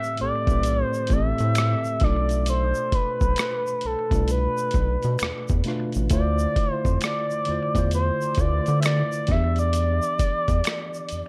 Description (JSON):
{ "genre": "R&B, neo-soul", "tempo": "66 BPM", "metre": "4/4", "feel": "swing 63% on 16ths", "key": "D dorian", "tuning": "A4 = 442 Hz", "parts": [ { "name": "expressive synth lead", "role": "melody", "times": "0.0-11.3 s", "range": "A4 to E5", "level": "-28 LUFS", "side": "equal", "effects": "chorus, analog delay" }, { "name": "tine electric piano", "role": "accompaniment", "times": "0.0-11.3 s", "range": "A2 to E5", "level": "-31 LUFS", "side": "equal", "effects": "overdrive, analog delay" }, { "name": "tube shaker and finger snaps", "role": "percussion", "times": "0.0-11.3 s", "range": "none", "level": "-41 LUFS", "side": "equal", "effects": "analog delay" }, { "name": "rubbery square bass", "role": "bass", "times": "0.2-11.2 s", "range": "A1 to D3", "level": "-26 LUFS", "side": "equal", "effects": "none" }, { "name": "boom bap sampler-style drum kit", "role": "drums", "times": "0.2-11.3 s", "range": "hi-hat, kick drum, rim click", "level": "-28 LUFS", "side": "equal", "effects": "none" } ], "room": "little or no reverb", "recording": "echo-heavy mix", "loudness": "-23 LUFS", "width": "mono", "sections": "0.0-11.3 A section", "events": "none", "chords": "0.0 Am9; 2.0 Bm7b5; 6.1 Dm9; 9.3 Em7", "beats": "0.65 1.56 | 2.47 3.38 4.29 5.20 | 6.11 7.01 7.92 8.83 | 9.74 10.65" }